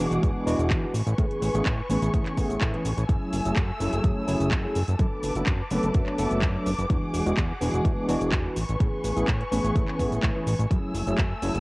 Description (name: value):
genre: filtered disco house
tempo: 126 BPM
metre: 4/4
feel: straight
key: unclear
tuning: A4 = 440 Hz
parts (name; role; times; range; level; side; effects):
- tine electric piano; accompaniment; 0.0-11.6 s; E3 to A4; -28 LUFS; equal; medium tremolo, phaser, sidechain pumping, cassette tape
- muted symphonic violin section; sustained chords; 0.0-11.6 s; A3 to E6; -33 LUFS; left 1 dB; vintage 12-bit sampler grit, sidechain pumping, cassette tape
- fat analog bass; bass; 0.0-11.6 s; E1 to A2; -28 LUFS; equal; sidechain pumping
- house drum kit; drums; 0.0-11.6 s; cabasa, handclaps, hi-hat; -34 LUFS; equal; sidechain pumping on perc, cassette tape, sidechain pumping on hats
- electronic kick drum; drums; 0.2-11.3 s; none; -25 LUFS; equal; cassette tape
room: little or no reverb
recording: home recording on cassette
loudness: -23 LUFS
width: side -24 dB against mid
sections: 0.0-11.6 A section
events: none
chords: 0.0 E9; 0.9 Amaj9; 3.1 F#m9; 5.0 Bm7/F#; 6.9 E9; 8.6 Amaj9; 10.7 F#m9